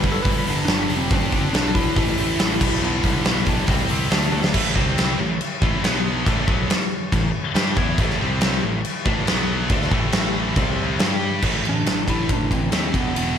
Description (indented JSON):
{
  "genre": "hard rock",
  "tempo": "140 BPM",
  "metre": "4/4",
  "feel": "straight",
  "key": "A dorian",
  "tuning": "A4 = 442 Hz",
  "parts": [
    { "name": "lightly driven lead guitar", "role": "melody", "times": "0.0-4.1, 11.7-13.4 s", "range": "B3 to B4", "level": "-26 LUFS", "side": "equal", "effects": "none" },
    { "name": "scooped high-gain guitar", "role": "riff", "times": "0.0-13.4 s", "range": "E2 to G4", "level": "-24 LUFS", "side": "left 1 dB", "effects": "distortion" },
    { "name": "picked electric bass", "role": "bass", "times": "0.0-13.4 s", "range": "E1 to G2", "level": "-26 LUFS", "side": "equal", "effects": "none" },
    { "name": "huge arena drum kit", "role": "drums", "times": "0.0-13.3 s", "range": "crash cymbal, hi-hat, kick drum, ride cymbal, snare drum, toms", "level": "-21 LUFS", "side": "equal", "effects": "none" }
  ],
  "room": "light reverb, small room ambience",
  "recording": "none",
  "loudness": "-18 LUFS",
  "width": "side -8 dB against mid",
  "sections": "0.0-4.5 A section; 4.5-11.4 B section; 11.4-13.4 C section",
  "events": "drum fill 4.3",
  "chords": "0.0 G5; 1.1 D/F#; 2.0 A5; 2.6 G/B; 3.7 C; 4.1 D5; 4.5 A5; 4.8 C5; 5.2 A5; 5.8 B5; 6.3 A5; 8.2 C5; 8.6 A5; 9.3 B5; 9.7 A5; 10.6 C5; 11.0 G5; 11.4 Am"
}